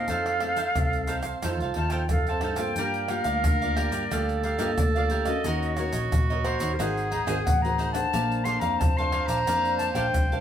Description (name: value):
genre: samba and choro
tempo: 90 BPM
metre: 4/4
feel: straight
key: G minor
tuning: A4 = 441 Hz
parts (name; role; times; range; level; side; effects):
- jazz flute; melody; 0.0-10.4 s; C5 to C6; -29 LUFS; left 2 dB; none
- bright clarinet; second line; 0.0-10.4 s; F4 to C5; -31 LUFS; right 3 dB; none
- cavaquinho; accompaniment; 0.0-10.4 s; Eb4 to A5; -32 LUFS; right 4 dB; none
- nylon-string guitar; accompaniment; 0.0-10.4 s; Bb2 to C5; -34 LUFS; left 4 dB; none
- vintage muted fingered electric bass; bass; 0.1-10.4 s; Ab1 to G2; -31 LUFS; equal; none
- egg shaker, surdo, pandeiro and tamborim; percussion; 0.1-10.4 s; none; -28 LUFS; equal; none
room: wet studio reverb, RT60 0.6 s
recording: band playing live in one room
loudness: -23 LUFS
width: side -9 dB against mid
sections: 0.0-2.8 A section; 2.8-10.4 B section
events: none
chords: 0.1 F7; 2.8 Gm9; 5.5 Ebm7; 6.8 Ab9; 8.1 Bbmaj9